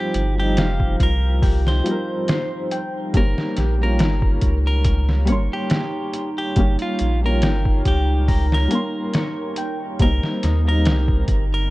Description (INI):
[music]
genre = trip hop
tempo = 70 BPM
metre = 4/4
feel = swing 54% on 16ths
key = unclear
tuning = A4 = 439 Hz
[part]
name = clean electric guitar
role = melody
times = 0.0-11.7 s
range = F4 to C5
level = -28 LUFS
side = equal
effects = dub echo
[part]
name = felt-muted upright piano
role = accompaniment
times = 0.0-11.7 s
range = F3 to C6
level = -26 LUFS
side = equal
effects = tremolo, tape echo
[part]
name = dark analog pad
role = sustained chords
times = 0.0-11.7 s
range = Eb4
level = -31 LUFS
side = right 1 dB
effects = lush chorus
[part]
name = Celtic harp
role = arpeggios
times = 0.0-11.7 s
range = Eb4 to G5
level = -32 LUFS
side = left 4 dB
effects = dub echo
[part]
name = warm sub bass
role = bass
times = 0.1-11.7 s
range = F1 to Eb2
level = -19 LUFS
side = equal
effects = none
[part]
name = trip hop sampler-style drum kit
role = drums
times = 0.1-11.5 s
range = hi-hat, kick drum, snare drum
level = -21 LUFS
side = equal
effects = none
[sound]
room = little or no reverb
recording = dark, warm production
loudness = -17 LUFS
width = side -19 dB against mid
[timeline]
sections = 0.0-11.7 A section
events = none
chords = 0.0 Fsus2; 3.1 Gdim; 10.0 Cm7